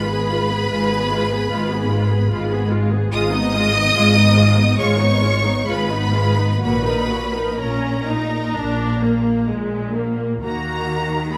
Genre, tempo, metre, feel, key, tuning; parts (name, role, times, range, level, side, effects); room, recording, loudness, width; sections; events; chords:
classical, slow romantic movement for string orchestra; 61-76 BPM; 4/4; rubato; Eb minor from 3.1 s; A4 = 440 Hz
rich symphonic violin section; melody; 0.0-11.4 s; Bb5 to Eb6; -25 LUFS; equal
rich studio violin section; second line; 0.0-11.4 s; Bb4 to Cb6; -28 LUFS; equal
rich symphonic viola section; accompaniment; 0.0-11.4 s; Ab3 to Bb4; -25 LUFS; equal
warm symphonic cello section; bass; 0.0-11.4 s; Ab2 to Eb3; -24 LUFS; equal
warm symphonic double bass section; bass; 0.0-11.4 s; Ab1 to Eb2; -25 LUFS; equal
moderate scoring stage reverb, RT60 1.7 s; close, detailed microphones; -18 LUFS; mono
0.0-10.4 A section
0.0 Fdim/Ab; 3.1 Fm7b5/Ab; 6.6 Ebm/Bb; 8.6 Bb; 10.4 Ebm